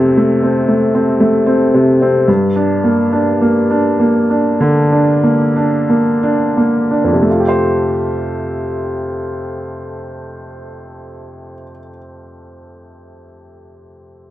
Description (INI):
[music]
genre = pop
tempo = 42-59 BPM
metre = 4/4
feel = straight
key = F major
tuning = A4 = 440 Hz
[part]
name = clear upright piano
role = accompaniment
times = 0.0-14.3 s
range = F2 to C5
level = -12 LUFS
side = equal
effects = none
[sound]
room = light reverb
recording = dark, warm production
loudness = -11 LUFS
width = side -14 dB against mid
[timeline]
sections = 0.0-7.3 A section; 7.3-12.9 B section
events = slowing down 0.0-7.3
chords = 0.0 F; 2.3 Gm; 7.3 Fadd9